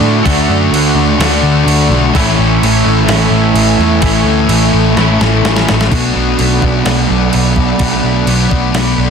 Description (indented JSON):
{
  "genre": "rock, shoegaze and dream pop",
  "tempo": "127 BPM",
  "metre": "4/4",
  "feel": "straight",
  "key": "unclear",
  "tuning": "A4 = 440 Hz",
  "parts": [
    { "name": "chorused pulse-width pad", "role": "sustained chords", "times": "0.0-9.1 s", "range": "A3 to C#6", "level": "-20 LUFS", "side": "left 1 dB", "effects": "none" },
    { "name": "crunchy overdriven guitar", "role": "riff", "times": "0.0-9.1 s", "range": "A2 to F#4", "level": "-16 LUFS", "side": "right 12 dB", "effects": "reverse reverb" },
    { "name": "overdriven electric guitar", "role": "riff", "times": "0.0-5.9 s", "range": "A2 to F#4", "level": "-16 LUFS", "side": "equal", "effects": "none" },
    { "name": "thick fuzz guitar", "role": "riff", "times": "0.0-9.1 s", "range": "A2 to D4", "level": "-16 LUFS", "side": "left 10 dB", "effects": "distortion, lush chorus" },
    { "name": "vintage muted picked electric bass", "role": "bass", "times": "0.0-9.1 s", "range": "A1 to A2", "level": "-14 LUFS", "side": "equal", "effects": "none" },
    { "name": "crisp 8-bit digital drum machine", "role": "drums", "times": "0.0-8.9 s", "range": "crash cymbal, kick drum, snare drum", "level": "-17 LUFS", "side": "right 1 dB", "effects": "overdrive" }
  ],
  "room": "little or no reverb",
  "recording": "dense, heavily limited modern master",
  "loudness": "-9 LUFS",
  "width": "side -6 dB against mid",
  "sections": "0.0-5.9 A section; 5.9-9.1 B section",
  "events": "drum fill 5.0-5.9",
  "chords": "0.0 Dmaj7; 2.1 Amaj7; 5.9 Bm7",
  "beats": "| 0.25 0.72 1.19 1.66 | 2.13 2.61 3.08 3.55 | 4.02 4.49 4.96 5.43 | 5.91 6.38 6.85 7.32 | 7.79 8.27 8.74"
}